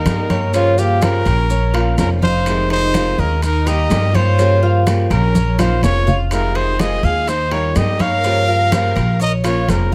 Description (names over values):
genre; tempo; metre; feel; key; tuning
latin, Cuban son and guajira; 125 BPM; 4/4; straight; unclear; A4 = 440 Hz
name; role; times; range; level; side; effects
breathy trumpet; melody; 0.0-9.9 s; F4 to F5; -22 LUFS; equal; none
rich studio violin section; second line; 0.0-9.9 s; Bb3 to Bb4; -30 LUFS; equal; none
flamenco guitar; accompaniment; 0.0-9.9 s; C3 to C5; -27 LUFS; equal; none
Cuban tres; arpeggios; 0.0-9.9 s; Db4 to F5; -25 LUFS; equal; none
upright bass; bass; 0.1-9.9 s; F1 to G2; -20 LUFS; equal; none
congas; percussion; 0.1-9.9 s; none; -23 LUFS; equal; none
maracas; percussion; 0.1-9.9 s; none; -38 LUFS; equal; none
timbales; percussion; 0.1-9.9 s; none; -31 LUFS; equal; none
room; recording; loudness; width
little or no reverb; close, detailed microphones; -16 LUFS; mono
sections
0.0-9.9 A section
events
drum fill 5.4-6.3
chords
0.0 Eb; 0.5 Gm7b5; 1.5 Bbmadd9; 2.5 Fm7; 3.4 Eb; 4.4 Gm7b5; 5.4 Bbmadd9; 6.3 Fm7; 7.3 Eb; 8.2 Gm7b5; 9.2 Bbmadd9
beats
0.06 | 0.54 1.02 1.50 1.98 | 2.46 2.94 3.43 3.91 | 4.39 4.87 5.35 5.83 | 6.31 6.79 7.28 7.76 | 8.24 8.72 9.20 9.69